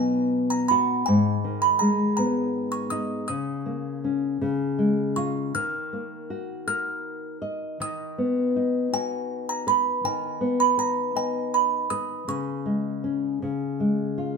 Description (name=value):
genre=children's music, lullaby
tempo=54 BPM (dotted quarters)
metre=6/8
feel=straight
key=unclear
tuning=A4 = 441 Hz
part: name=music box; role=melody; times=0.0-13.8 s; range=G#5 to E#6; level=-25 LUFS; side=right 5 dB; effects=none
part: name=nylon-string guitar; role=accompaniment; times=0.0-14.4 s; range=G#2 to D#5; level=-25 LUFS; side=left 2 dB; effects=none
room=wet studio reverb, RT60 0.9 s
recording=band playing live in one room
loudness=-23 LUFS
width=side -5 dB against mid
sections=0.0-14.4 A section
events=none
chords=0.0 B; 1.1 G#m; 3.3 A#madd11/C#; 4.4 C#; 5.5 D#madd9; 7.8 B/D#; 10.0 G#m/D#; 12.3 C#5; 13.4 C#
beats=| 1.06 2.17 | 3.29 4.41 | 5.54 6.67 | 7.81 8.93 | 10.04 11.16 | 12.28 13.41